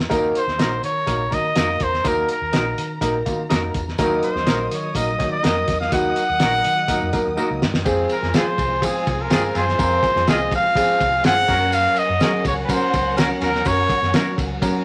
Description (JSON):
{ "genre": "uptempo 1960s-style soul", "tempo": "124 BPM", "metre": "4/4", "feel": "straight", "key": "unclear", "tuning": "A4 = 440 Hz", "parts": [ { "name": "warm upright piano", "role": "accompaniment", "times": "0.0-14.8 s", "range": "Gb3 to Db5", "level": "-26 LUFS", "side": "equal", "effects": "none" }, { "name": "vintage muted fingered electric bass", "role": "bass", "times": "0.0-14.8 s", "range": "Bb1 to Gb3", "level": "-31 LUFS", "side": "equal", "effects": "none" }, { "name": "warm studio violin section", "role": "second line", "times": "0.1-14.8 s", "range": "Db4 to Eb6", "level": "-35 LUFS", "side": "equal", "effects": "none" }, { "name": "cloth-damped thuddy drum kit", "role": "drums", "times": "0.1-14.7 s", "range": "crash cymbal, hi-hat, kick drum, ride cymbal, snare drum", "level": "-26 LUFS", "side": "equal", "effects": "none" }, { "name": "tambourine", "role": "percussion", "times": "0.1-14.7 s", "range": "none", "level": "-42 LUFS", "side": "equal", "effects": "none" }, { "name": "clear trumpet", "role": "melody", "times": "0.4-14.4 s", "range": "Ab4 to Gb5", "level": "-23 LUFS", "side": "equal", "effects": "none" }, { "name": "semi-hollow electric guitar", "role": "stabs", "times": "0.6-14.3 s", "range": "C4 to Bb4", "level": "-29 LUFS", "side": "equal", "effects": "none" }, { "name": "percussive tonewheel organ", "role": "sustained chords", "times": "4.0-14.8 s", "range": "F3 to Eb4", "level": "-34 LUFS", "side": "equal", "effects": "none" } ], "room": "moderate studio ambience, RT60 0.5 s", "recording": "vinyl crackle", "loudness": "-20 LUFS", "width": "mono", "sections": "0.1-7.9 A section; 7.9-14.8 B section", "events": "drum fill 7.4-7.9", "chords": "0.1 Ebm; 7.9 Fm; 11.5 Gb", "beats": "| 0.11 0.60 1.08 1.57 | 2.05 2.54 3.02 3.50 | 3.99 4.47 4.96 5.44 | 5.92 6.41 6.89 7.38 | 7.86 8.34 8.82 9.31 | 9.79 10.28 10.76 11.24 | 11.72 12.21 12.69 13.17 | 13.66 14.14 14.62" }